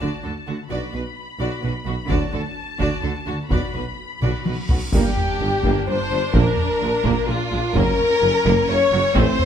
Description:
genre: cinematic, epic orchestral film score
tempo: 128 BPM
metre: 3/4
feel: straight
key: unclear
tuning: A4 = 440 Hz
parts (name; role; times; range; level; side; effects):
- rich symphonic violin section; melody; 0.0-9.5 s; F4 to B5; -30 LUFS; left 3 dB; none
- rich chamber violin section; second line; 0.0-9.5 s; F4 to D5; -27 LUFS; equal; none
- rich symphonic viola section; accompaniment; 0.0-9.5 s; F3 to F#4; -28 LUFS; right 2 dB; none
- rich symphonic cello section; bass; 0.0-9.2 s; F#2 to D3; -29 LUFS; right 3 dB; none
- rich symphonic double bass section; bass; 0.0-9.2 s; F#1 to D2; -27 LUFS; right 3 dB; none
- warm tuba; bass; 0.0-9.2 s; F#1 to D2; -29 LUFS; right 4 dB; none
- taiko ensemble; drums; 0.0-9.5 s; none; -23 LUFS; equal; none
- mellow French horn section; sustained chords; 0.7-9.5 s; D4 to C#5; -22 LUFS; left 5 dB; none
- mellow trombone section; sustained chords; 0.7-9.3 s; A2 to D4; -31 LUFS; right 4 dB; none
- cymbal swell and impact; sound effects; 4.4-6.3 s; none; -32 LUFS; equal; none
room: light reverb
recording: close, detailed microphones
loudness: -18 LUFS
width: side -9 dB against mid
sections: 0.0-4.9 A section; 4.9-9.5 B section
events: drum fill 4.2-4.9; cymbal swell 4.4-4.9; impact 4.9-6.3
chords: 0.0 D; 0.7 Bm; 2.1 D; 3.5 Bm; 4.9 Gm; 6.3 Bb; 7.8 F#

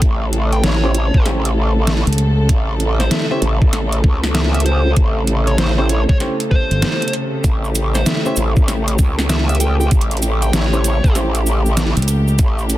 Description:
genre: glitch hop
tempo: 97 BPM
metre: 4/4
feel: swing 64% on 16ths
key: unclear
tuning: A4 = 440 Hz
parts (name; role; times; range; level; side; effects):
- warm studio string section; sustained chords; 0.0-12.8 s; B#2 to A4; -24 LUFS; equal; sidechain pumping
- growl bass; bass; 0.0-12.8 s; A1 to C#2; -17 LUFS; equal; chorus, tube saturation
- dubstep drum kit; drums; 0.0-12.8 s; hi-hat, snare drum; -20 LUFS; equal; none
- electronic kick drum; drums; 0.0-12.5 s; none; -14 LUFS; equal; none
- dark smooth lead guitar; melody; 0.5-11.2 s; B#4 to G5; -26 LUFS; equal; overdrive, digital delay
- clear grand piano; stabs; 0.8-11.3 s; C#4 to B#4; -24 LUFS; equal; sidechain pumping, digital delay
- overdriven fingered electric bass; bass; 2.1-2.5, 6.7-6.8, 12.0-12.4 s; G1 to C#2; -14 LUFS; equal; none
- cabasa; percussion; 7.4-12.8 s; none; -27 LUFS; right 4 dB; none
room: light reverb, digital ambience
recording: dense, heavily limited modern master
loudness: -14 LUFS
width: side -15 dB against mid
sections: 0.0-12.8 A section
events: none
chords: 0.0 A7#9

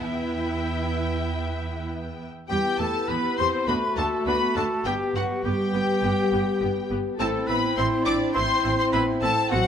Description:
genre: quick classical-period movement for symphony orchestra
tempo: 102 BPM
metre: 4/4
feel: rubato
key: E minor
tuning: A4 = 440 Hz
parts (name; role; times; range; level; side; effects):
- rich studio violin section; melody; 0.0-9.7 s; F#5 to D6; -30 LUFS; left 4 dB; none
- dark studio violin section; second line; 0.0-9.7 s; F#4 to E5; -34 LUFS; left 3 dB; none
- rich studio viola section; accompaniment; 0.0-9.6 s; B3 to G4; -33 LUFS; right 2 dB; none
- rich studio double bass section; bass; 0.0-9.6 s; G1 to E2; -31 LUFS; right 3 dB; none
- warm studio cello section; bass; 0.0-9.7 s; F#3 to E4; -31 LUFS; right 2 dB; none
- clear oboe; second line; 2.5-9.7 s; F#4 to D5; -32 LUFS; right 1 dB; none
- hollow concert flute; second line; 2.5-9.7 s; F#5 to D6; -30 LUFS; left 3 dB; none
- mellow clarinet; second line; 2.5-9.7 s; E4 to G4; -33 LUFS; equal; none
- mellow bassoon; accompaniment; 2.5-9.7 s; A3 to C4; -33 LUFS; right 2 dB; none
- dark French horn section; sustained chords; 2.5-9.7 s; A3 to G4; -29 LUFS; left 3 dB; none
room: light reverb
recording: none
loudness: -22 LUFS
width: side -8 dB against mid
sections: 0.0-2.5 A section; 2.5-9.7 B section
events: none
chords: 0.0 Em; 3.7 D; 4.9 G; 7.2 Am

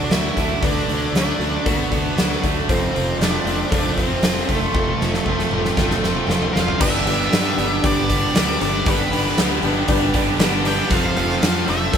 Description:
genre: classic rock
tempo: 117 BPM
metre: 4/4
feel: straight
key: G mixolydian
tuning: A4 = 441 Hz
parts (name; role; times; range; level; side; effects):
- octave-fuzz lead guitar; melody; 0.0-12.0 s; A3 to G5; -25 LUFS; equal; distortion
- honky-tonk upright piano; accompaniment; 0.0-12.0 s; C4 to C5; -29 LUFS; left 4 dB; none
- picked steel-string acoustic guitar; accompaniment; 0.0-6.8 s; D3 to A4; -35 LUFS; left 3 dB; none
- crunchy overdriven guitar; riff; 0.0-12.0 s; F2 to A4; -25 LUFS; right 7 dB; none
- distorted electric guitar; riff; 0.0-12.0 s; F2 to D4; -26 LUFS; left 7 dB; overdrive
- fuzz fingered electric bass; bass; 0.0-12.0 s; F1 to G2; -25 LUFS; left 1 dB; overdrive
- huge arena drum kit; drums; 0.1-12.0 s; crash cymbal, hi-hat, kick drum, snare drum, toms; -21 LUFS; equal; none
- overdriven electric guitar; riff; 6.8-12.0 s; F2 to D4; -26 LUFS; equal; none
room: moderate studio reverb, RT60 0.8 s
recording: band playing live in one room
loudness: -17 LUFS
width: side -8 dB against mid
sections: 0.0-6.8 A section; 6.8-12.0 B section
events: drum fill 4.8-6.8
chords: 0.0 D; 2.7 F; 6.8 G; 10.9 F

